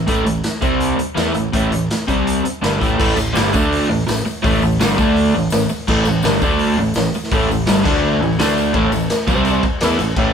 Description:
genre	garage rock duo or trio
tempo	167 BPM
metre	4/4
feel	straight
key	unclear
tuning	A4 = 440 Hz
part	crunchy overdriven guitar	riff	0.0-10.3 s	G2 to E4	-16 LUFS	equal	none
part	fuzz fingered electric bass	bass	0.0-10.3 s	G1 to E2	-25 LUFS	equal	overdrive
part	raw garage drum kit	drums	0.1-10.2 s	crash cymbal, hi-hat, kick drum, snare drum	-20 LUFS	left 1 dB	none
part	tambourine	percussion	3.0-10.1 s	none	-35 LUFS	left 6 dB	none
room	moderate large studio reverb, RT60 1.0 s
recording	band playing live in one room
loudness	-14 LUFS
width	side -7 dB against mid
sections	0.0-3.0 A section; 3.0-8.7 B section; 8.7-10.3 C section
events	none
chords	0.0 A5; 0.6 C5; 1.0 A5; 2.1 C5; 2.5 A5; 3.5 D5; 3.9 A5; 5.0 D5; 5.3 A5; 6.4 D5; 6.8 A5; 7.9 D5; 8.2 A5; 8.4 D5; 8.7 A5; 9.3 C5; 9.6 A5

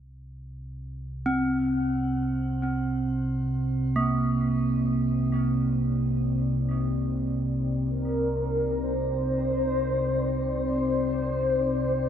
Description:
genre	dark ambient drone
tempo	free time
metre	none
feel	none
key	unclear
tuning	A4 = 440 Hz
part	deep dark ambient pad	sustained chords	2.1-12.1 s	C4 to D5	-33 LUFS	left 2 dB	chorus, built-in reverb
part	deep rumbling drone	drone	0.3-12.1 s	C2 to C3	-28 LUFS	equal	built-in reverb
part	gamelan-type bronze metallophone	arpeggios	1.3-9.4 s	Bb3 to C4	-28 LUFS	right 2 dB	tape echo
part	mellow horn-like synth lead	melody	7.9-12.1 s	Bb4 to C5	-27 LUFS	left 1 dB	lush chorus, shimmer reverb, tape echo
room	wet cathedral reverb, RT60 5.7 s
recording	none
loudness	-24 LUFS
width	side -9 dB against mid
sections	0.0-12.1 A section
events	fade-in on ambient pad 0.0-12.1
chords	0.0 Cmadd9

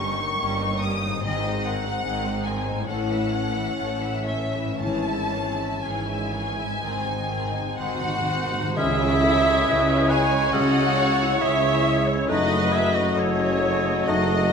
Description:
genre	classical, slow romantic movement for symphony orchestra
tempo	55-75 BPM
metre	4/4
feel	rubato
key	C# minor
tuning	A4 = 437 Hz
part	rich studio violin section	melody	0.0-14.5 s	C#5 to D#6	-28 LUFS	left 1 dB	none
part	rich studio violin section	second line	0.0-14.5 s	C#4 to E5	-33 LUFS	left 3 dB	none
part	warm studio viola section	accompaniment	0.0-14.5 s	D#3 to D#5	-31 LUFS	right 4 dB	none
part	mellow French horn section	sustained chords	0.0-14.5 s	D#3 to F#4	-31 LUFS	left 5 dB	none
part	concert harp	arpeggios	0.0-14.5 s	F#2 to D#6	-32 LUFS	left 8 dB	none
part	clear studio double bass section	bass	0.0-14.5 s	F#1 to C#2	-32 LUFS	right 3 dB	none
part	rich studio cello section	bass	0.0-14.5 s	F#2 to C#3	-30 LUFS	right 2 dB	none
part	timpani	percussion	1.2-8.7 s	G#2	-34 LUFS	right 1 dB	none
part	mellow oboe	second line	7.8-14.5 s	E4 to B#4	-30 LUFS	right 1 dB	none
part	silver concert flute	second line	7.8-14.5 s	C#5 to G#5	-27 LUFS	equal	none
part	clear clarinet	second line	8.8-14.4 s	C#4 to D#4	-31 LUFS	left 3 dB	none
part	mellow bassoon	accompaniment	8.8-14.4 s	G#3 to A3	-32 LUFS	right 2 dB	none
part	bright trombone section	sustained chords	8.8-14.5 s	C#3 to A3	-32 LUFS	right 4 dB	none
part	warm trumpet section	stabs	8.8-14.5 s	C#5 to D#5	-29 LUFS	right 1 dB	none
part	mellow tuba	bass	8.8-14.5 s	F#1 to C#2	-31 LUFS	right 4 dB	none
part	tam-tam	percussion	8.8-12.3 s	none	-37 LUFS	left 2 dB	none
room	wet recital hall reverb, RT60 1.4 s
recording	minimal, uncompressed stereo recording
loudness	-20 LUFS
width	side -6 dB against mid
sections	0.0-8.8 A section; 8.8-14.5 B section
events	timpani fill 6.8-8.8; band accent 8.8-9.7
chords	0.0 D#7/G; 1.2 G#; 2.9 A; 4.8 C#m/G#; 6.8 G#; 8.8 C#m; 12.3 D#dim/F#

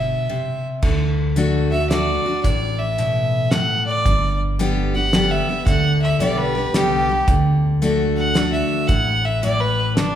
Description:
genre	honky-tonk and classic country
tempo	112 BPM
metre	3/4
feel	swing 65% on 8ths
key	D mixolydian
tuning	A4 = 440 Hz
part	clear fiddle	melody	0.0-10.2 s	D4 to F#5	-22 LUFS	right 1 dB	none
part	picked steel-string acoustic guitar	accompaniment	0.0-10.2 s	G2 to G4	-22 LUFS	left 2 dB	none
part	upright bass	bass	0.0-10.2 s	G1 to D2	-23 LUFS	right 1 dB	none
part	cloth-damped thuddy drum kit	drums	0.8-10.1 s	crash cymbal, hi-hat, kick drum, snare drum	-22 LUFS	equal	none
room	wet recital hall reverb, RT60 1.5 s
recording	recorded in a church or concert hall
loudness	-16 LUFS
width	side -10 dB against mid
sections	0.8-10.2 A section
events	break 0.3-0.8; fiddle solo 0.8-10.2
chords	0.0 C; 0.8 D; 4.1 G; 7.3 D

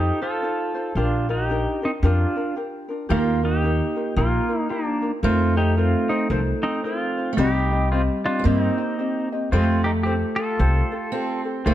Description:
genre	Hawaiian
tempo	112 BPM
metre	4/4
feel	swing 61% on 8ths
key	unclear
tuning	A4 = 440 Hz
part	pedal steel guitar	melody	0.0-11.7 s	F3 to A4	-25 LUFS	right 1 dB	none
part	ukulele	accompaniment	0.0-11.7 s	C4 to Eb5	-28 LUFS	left 3 dB	none
part	upright bass	bass	0.0-11.7 s	Bb1 to G2	-21 LUFS	equal	none
part	fingerpicked acoustic archtop guitar	second line	3.1-11.7 s	G3 to C4	-26 LUFS	right 3 dB	none
room	light reverb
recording	none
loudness	-20 LUFS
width	side -12 dB against mid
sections	0.0-11.7 A section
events	none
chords	0.0 F7; 1.0 Bb6; 3.1 Ebadd9; 5.2 F7sus4; 7.4 Cm; 9.5 Fadd9

